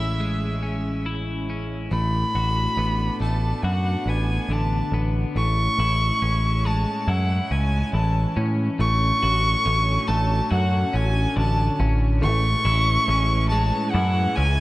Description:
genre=rock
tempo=70 BPM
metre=4/4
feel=straight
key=A major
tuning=A4 = 440 Hz
part: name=warm violin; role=melody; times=0.0-14.6 s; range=E5 to C#6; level=-25 LUFS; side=equal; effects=slapback echo
part: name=warm studio string section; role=sustained chords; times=0.0-14.6 s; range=C#3 to D4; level=-34 LUFS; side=right 2 dB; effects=none
part: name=twelve-string electric guitar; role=arpeggios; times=0.0-14.6 s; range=A2 to F#4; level=-28 LUFS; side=left 2 dB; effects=slapback echo
part: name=overdriven picked electric bass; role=bass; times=0.0-14.6 s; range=A1 to A2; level=-22 LUFS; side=equal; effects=none
room=light reverb, small room ambience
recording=dark, warm production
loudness=-20 LUFS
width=side -18 dB against mid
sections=0.0-1.9 A section; 1.9-14.6 B section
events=build-up 1.9-14.6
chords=0.0 Amaj7; 1.9 Bm7/A; 5.4 Amaj7; 8.8 Dmaj7/A; 12.2 Amaj7

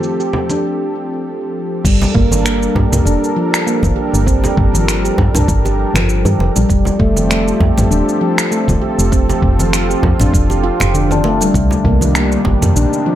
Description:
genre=organic downtempo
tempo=99 BPM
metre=4/4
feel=swing 56% on 16ths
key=G minor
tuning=A4 = 441 Hz
part: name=warm analog pad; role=sustained chords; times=0.0-13.2 s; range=C3 to Bb4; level=-21 LUFS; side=equal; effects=chorus, sidechain pumping
part: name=handpan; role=arpeggios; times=0.0-13.2 s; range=D3 to G4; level=-17 LUFS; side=equal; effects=digital delay
part: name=organic electronic drum kit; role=drums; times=0.0-13.0 s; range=cabasa, crash cymbal, finger snaps, toms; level=-19 LUFS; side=right 1 dB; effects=none
part: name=congas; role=percussion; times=0.3-12.7 s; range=none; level=-23 LUFS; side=right 1 dB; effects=none
part: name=woody FM bass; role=bass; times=1.8-12.9 s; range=Eb1 to G2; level=-16 LUFS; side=equal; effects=none
part: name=electronic kick drum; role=drums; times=1.8-12.6 s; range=none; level=-17 LUFS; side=equal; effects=none
room=light reverb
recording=low-pass filter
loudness=-12 LUFS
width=side -12 dB against mid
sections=0.0-1.8 A section; 1.8-13.2 B section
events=filter sweep on handpan 0.0-1.8; filter sweep 0.0-1.8; break 0.6-1.8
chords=0.0 F; 1.8 Gm7; 6.7 F; 11.5 Cm7

